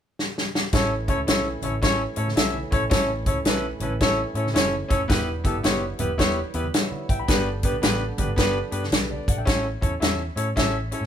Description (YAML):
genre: uptempo 1960s-style soul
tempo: 110 BPM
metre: 4/4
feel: swing 64% on 8ths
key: A mixolydian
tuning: A4 = 435 Hz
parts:
  - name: natural country drum kit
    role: drums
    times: 0.2-11.1 s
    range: hi-hat, kick drum, snare drum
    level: -23 LUFS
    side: equal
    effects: none
  - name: clear concert grand piano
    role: accompaniment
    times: 0.7-11.0 s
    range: B3 to B5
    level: -25 LUFS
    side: left 1 dB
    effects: none
  - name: tonewheel organ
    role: sustained chords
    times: 0.7-9.4 s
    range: D3 to E4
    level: -36 LUFS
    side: right 3 dB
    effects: slow rotary speaker, overdrive, chorus vibrato
  - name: vintage muted fingered electric bass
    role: bass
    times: 0.7-11.1 s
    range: E1 to A2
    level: -30 LUFS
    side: equal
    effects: none
  - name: congas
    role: percussion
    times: 0.7-9.3 s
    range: none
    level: -38 LUFS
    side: right 4 dB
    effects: none
room: light reverb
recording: band playing live in one room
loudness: -21 LUFS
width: side -9 dB against mid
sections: 0.7-9.5 A section; 9.5-11.1 B section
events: drum fill 0.2-0.7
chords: 0.0 N.C.; 0.7 A; 5.1 Em; 7.3 G; 9.5 A